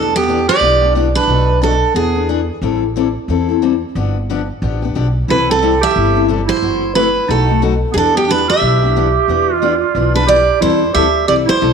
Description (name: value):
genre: acoustic string swing (jazz manouche)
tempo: 180 BPM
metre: 4/4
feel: swing 60% on 8ths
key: E minor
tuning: A4 = 442 Hz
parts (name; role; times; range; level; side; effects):
- picked steel-string acoustic guitar; melody; 0.0-2.3, 5.3-11.7 s; G4 to E5; -15 LUFS; right 1 dB; slapback echo
- growling clarinet; second line; 0.0-2.3, 5.3-11.7 s; B3 to G4; -18 LUFS; right 10 dB; none
- picked steel-string acoustic guitar; accompaniment; 0.0-11.7 s; B2 to A4; -19 LUFS; left 10 dB; none
- upright bass; bass; 0.0-11.7 s; F#1 to E2; -18 LUFS; equal; none
room: moderate echo chamber reverb, RT60 2.1 s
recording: 1960s-style stereo with parts hard left and right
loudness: -12 LUFS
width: side -6 dB against mid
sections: 0.0-10.6 A section; 10.6-11.7 B section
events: none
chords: 0.0 Em7; 1.3 Bm7b5; 2.0 E7; 2.6 Am7; 4.0 G7; 5.3 C6; 6.6 F#m7b5; 7.3 B7; 8.0 Em7; 10.6 Am7